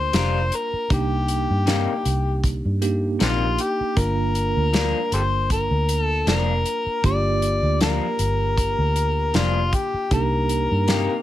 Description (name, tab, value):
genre	straight-eighth soul blues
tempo	78 BPM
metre	4/4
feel	swing 55% on 16ths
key	G minor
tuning	A4 = 439 Hz
part	overdriven harmonica	melody	0.0-11.2 s	C4 to D5	-24 LUFS	left 3 dB	none
part	bell-like tine electric piano	accompaniment	0.0-11.2 s	Bb3 to Bb4	-28 LUFS	right 4 dB	medium stereo tremolo
part	vintage muted fingered electric bass	bass	0.0-11.1 s	F1 to G2	-23 LUFS	equal	none
part	electric guitar through a small old amp	stabs	0.1-11.1 s	G2 to Bb4	-27 LUFS	left 6 dB	lush chorus
part	warm soul drum kit	drums	0.1-11.1 s	hi-hat, kick drum, snare drum	-24 LUFS	equal	none
room	light reverb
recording	none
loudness	-19 LUFS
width	side -13 dB against mid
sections	0.0-11.2 A section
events	none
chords	0.0 Gm7; 0.9 Cm7; 4.0 Gm7; 10.1 Cm7